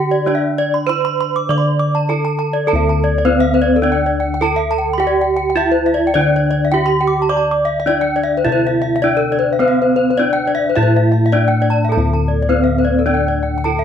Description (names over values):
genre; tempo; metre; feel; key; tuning
Balinese gamelan; 104 BPM; 4/4; straight; D slendro; A4 = 440 Hz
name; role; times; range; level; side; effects
gamelan-type bronze metallophone; melody; 0.0-13.8 s; C4-45c to D5; -18 LUFS; right 2 dB; none
gamelan-type bronze metallophone; arpeggios; 0.0-13.8 s; A4+25c to D6; -18 LUFS; left 2 dB; none
gamelan-type bossed gongs; bass; 0.0-13.8 s; D2 to D5; -18 LUFS; left 1 dB; none
room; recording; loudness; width
wet studio reverb, RT60 0.6 s; heard from further back in the room; -13 LUFS; side -8 dB against mid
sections
0.0-2.7 A section; 2.7-13.8 B section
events
none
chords
none